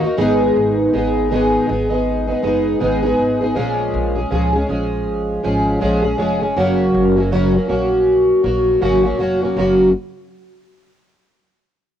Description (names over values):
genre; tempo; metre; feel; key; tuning
acoustic pop; 80 BPM; 4/4; swing 60% on 16ths; F# major; A4 = 443 Hz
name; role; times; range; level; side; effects
fingerpicked plugged-in twelve-string acoustic guitar; accompaniment; 0.0-9.9 s; F#2 to G#4; -15 LUFS; equal; double-tracked left and right, cassette tape
upright bass; bass; 0.0-9.9 s; E#1 to D#2; -25 LUFS; equal; none
room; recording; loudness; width
wet booth ambience, RT60 0.2 s; home recording on cassette; -14 LUFS; side -10 dB against mid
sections
0.0-3.6 A section; 3.6-9.6 B section; 9.6-12.0 C section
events
none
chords
0.2 G#m; 3.6 A#m7; 6.6 F#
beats
| 0.56 1.31 2.06 2.81 | 3.56 4.32 5.07 5.82 | 6.57 7.32 8.07 8.82 | 9.57